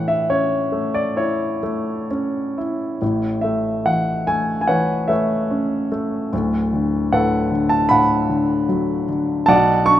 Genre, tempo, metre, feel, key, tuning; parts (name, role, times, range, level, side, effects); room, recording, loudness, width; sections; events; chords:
classical, lyrical solo piano; 61-77 BPM; 4/4; rubato; A major; A4 = 440 Hz
warm grand piano; solo; 0.0-10.0 s; D1 to C#6; -17 LUFS; equal
light reverb; -17 LUFS; side -12 dB against mid
0.0-3.0 A section; 3.0-10.0 B section
0.0 A; 3.0 Aadd9; 6.3 D6; 9.5 Bm7